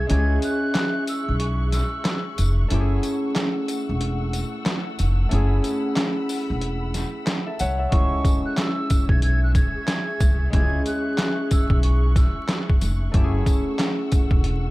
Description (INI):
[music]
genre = hip hop, boom-bap hip-hop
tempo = 92 BPM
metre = 4/4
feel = swing 61% on 16ths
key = C# minor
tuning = A4 = 441 Hz
[part]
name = breathy silver concert flute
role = melody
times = 0.0-2.2, 7.9-12.7 s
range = C#6 to G#6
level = -30 LUFS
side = right 2 dB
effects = high-pass filter, low-pass filter, ping-pong delay
[part]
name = concert harp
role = accompaniment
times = 0.0-14.7 s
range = G#3 to F#5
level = -27 LUFS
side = equal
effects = cassette tape, high-pass filter, low-pass filter
[part]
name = warm studio string section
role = sustained chords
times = 0.0-14.7 s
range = A3 to F#6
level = -34 LUFS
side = left 2 dB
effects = high-pass filter, low-pass filter
[part]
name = upright bass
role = bass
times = 0.0-14.7 s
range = E1 to C#2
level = -22 LUFS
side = equal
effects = none
[part]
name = trip hop sampler-style drum kit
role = drums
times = 0.1-14.6 s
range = handclaps, hi-hat, kick drum, snare drum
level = -22 LUFS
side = equal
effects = none
[part]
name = tambourine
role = percussion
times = 0.4-14.3 s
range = none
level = -39 LUFS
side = left 6 dB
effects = none
[sound]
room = small room ambience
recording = vinyl crackle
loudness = -20 LUFS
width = side -19 dB against mid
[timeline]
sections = 0.0-14.7 A section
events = break 0.0-7.9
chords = 0.0 C#m; 2.7 F#m7; 7.9 C#m; 13.1 F#m7